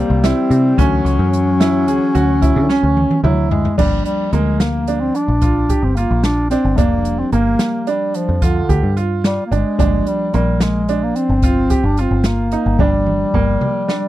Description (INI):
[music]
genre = progressive instrumental, band music in an uneven meter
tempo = 220 BPM (eighths)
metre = 11/8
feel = straight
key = unclear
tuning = A4 = 441 Hz
[part]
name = mellow bass clarinet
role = melody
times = 0.0-14.1 s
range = D3 to D4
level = -18 LUFS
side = left 1 dB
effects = none
[part]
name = mellow alto saxophone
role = second line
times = 0.0-3.5 s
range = F#3 to G3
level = -23 LUFS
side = left 7 dB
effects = none
[part]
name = hollow-body jazz guitar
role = accompaniment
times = 0.0-14.1 s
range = E3 to G4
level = -27 LUFS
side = left 2 dB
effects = double-tracked left and right
[part]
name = bright baby grand piano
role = arpeggios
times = 0.0-14.1 s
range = Bb3 to Ab4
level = -22 LUFS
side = right 9 dB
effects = none
[part]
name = picked electric bass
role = bass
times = 0.0-13.6 s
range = F1 to D3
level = -18 LUFS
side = equal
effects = none
[part]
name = open jazz drum kit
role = drums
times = 0.2-14.0 s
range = crash cymbal, hi-hat, kick drum, snare drum, toms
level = -19 LUFS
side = equal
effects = none
[sound]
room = little or no reverb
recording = dry, close 1970s-style studio recording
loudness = -13 LUFS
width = side -14 dB against mid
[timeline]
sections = 0.0-3.8 A section; 3.8-14.1 B section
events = drum fill 2.7-3.8, 12.8-14.1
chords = 0.0 C9; 0.8 Dmaj9; 3.8 Gm7; 9.8 Ebmaj7/G (rootless); 12.8 Gm7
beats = 0.24 0.51 | 0.79 1.06 1.33 1.60 1.88 2.15 2.42 2.69 2.96 3.24 3.51 | 3.78 4.06 4.33 4.60 4.87 5.15 5.42 5.69 5.96 6.24 6.51 | 6.78 7.06 7.33 7.60 7.88 8.15 8.42 8.70 8.97 9.24 9.51 | 9.79 10.06 10.33 10.61 10.88 11.15 11.43 11.70 11.97 12.25 12.52 | 12.79 13.07 13.34 13.61 13.89